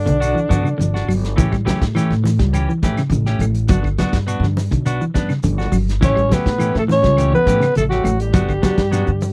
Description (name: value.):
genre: afrobeat.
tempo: 103 BPM.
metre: 4/4.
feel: straight.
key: A mixolydian.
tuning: A4 = 440 Hz.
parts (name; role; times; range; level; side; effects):
growling alto saxophone; melody; 0.0-1.1, 6.0-9.3 s; D4 to C#5; -22 LUFS; equal; none.
clear trombone; second line; 0.0-1.1, 6.1-9.3 s; D3 to C#4; -28 LUFS; equal; none.
upright bass; bass; 0.0-9.3 s; G1 to A2; -22 LUFS; equal; none.
clean electric guitar; arpeggios; 0.1-9.2 s; C#3 to A3; -24 LUFS; equal; spring reverb.
warm soul drum kit; drums; 0.1-9.3 s; hi-hat, kick drum, snare drum; -23 LUFS; equal; none.
congas; percussion; 0.1-9.3 s; none; -28 LUFS; equal; none.
shekere; percussion; 0.1-9.3 s; none; -32 LUFS; equal; none.
clean electric guitar; stabs; 0.2-9.1 s; E3 to G4; -26 LUFS; equal; none.
claves; percussion; 0.2-9.1 s; none; -40 LUFS; equal; none.
room: little or no reverb.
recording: dry, close 1970s-style studio recording.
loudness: -17 LUFS.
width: mono.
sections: 0.0-9.3 A section.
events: none.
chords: 0.0 Gmaj7; 1.4 A7; 3.7 Gmaj7; 6.0 A7; 8.3 Gmaj7.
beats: 0.22 0.80 | 1.38 1.96 2.54 3.12 | 3.70 4.28 4.86 5.44 | 6.02 6.60 7.18 7.76 | 8.34 8.93.